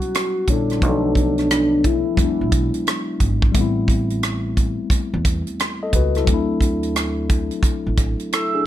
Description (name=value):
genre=R&B, neo-soul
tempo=88 BPM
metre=4/4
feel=swing 63% on 16ths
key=unclear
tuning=A4 = 442 Hz
part: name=soft octave-layered synth lead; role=melody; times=0.0-3.2, 8.3-8.6 s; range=D4 to E6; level=-22 LUFS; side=equal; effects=chorus, phaser, plate reverb, tape echo
part: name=mellow tine electric piano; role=accompaniment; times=0.0-8.7 s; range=F3 to F#5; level=-23 LUFS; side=moving between left 6 dB and equal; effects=auto-pan, plate reverb
part: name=tight funk drum kit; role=drums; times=0.0-8.5 s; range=hi-hat, kick drum, rim click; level=-20 LUFS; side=right 1 dB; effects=none
part: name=upright bass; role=bass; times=0.5-8.1 s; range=G#1 to E2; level=-24 LUFS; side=right 1 dB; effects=none
room=moderate studio reverb, RT60 0.8 s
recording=none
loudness=-17 LUFS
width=side -12 dB against mid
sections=0.0-8.7 A section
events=none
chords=0.0 Em69; 0.8 Bm7b5; 2.2 E7; 3.5 Am7; 6.3 D9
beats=0.14 | 0.82 1.50 2.18 2.87 | 3.55 4.23 4.91 5.59 | 6.27 6.96 7.64 8.32